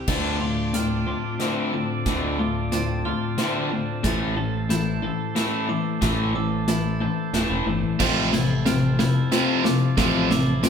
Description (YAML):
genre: post-rock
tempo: 91 BPM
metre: 3/4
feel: straight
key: D minor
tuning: A4 = 439 Hz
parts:
  - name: twelve-string electric guitar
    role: arpeggios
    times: 0.0-10.7 s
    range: D2 to A4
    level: -31 LUFS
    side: equal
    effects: none
  - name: growling fingered electric bass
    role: bass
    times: 0.0-10.7 s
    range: D1 to D2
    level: -28 LUFS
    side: right 1 dB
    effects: overdrive
  - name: warm woodwind section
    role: sustained chords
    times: 0.1-10.7 s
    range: F3 to D6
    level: -34 LUFS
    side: right 4 dB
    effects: none
  - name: glockenspiel with hard plastic mallets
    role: arpeggios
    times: 0.1-10.7 s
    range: D6 to A6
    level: -35 LUFS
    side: right 5 dB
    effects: none
  - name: distorted electric guitar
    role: riff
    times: 0.1-10.7 s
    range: D2 to A3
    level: -24 LUFS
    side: left 4 dB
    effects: distortion
  - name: big rock drum kit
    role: drums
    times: 0.1-10.7 s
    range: crash cymbal, hi-hat, kick drum, snare drum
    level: -27 LUFS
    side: right 1 dB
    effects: none
  - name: tight distorted guitar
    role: riff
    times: 8.0-10.7 s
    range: F2 to F3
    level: -26 LUFS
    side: right 7 dB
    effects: distortion
room: wet stone room reverb, RT60 1.2 s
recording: band playing live in one room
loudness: -20 LUFS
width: side -7 dB against mid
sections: 0.1-10.7 A section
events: build-up 0.1-10.7; drum fill 0.1-10.7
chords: 0.1 Dm7; 4.0 Am7; 8.0 Fmaj7/A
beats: | 0.08 0.74 1.40 | 2.06 2.72 3.38 | 4.05 4.71 5.37 | 6.03 6.69 7.34 | 8.00 8.66 9.32 | 9.98 10.64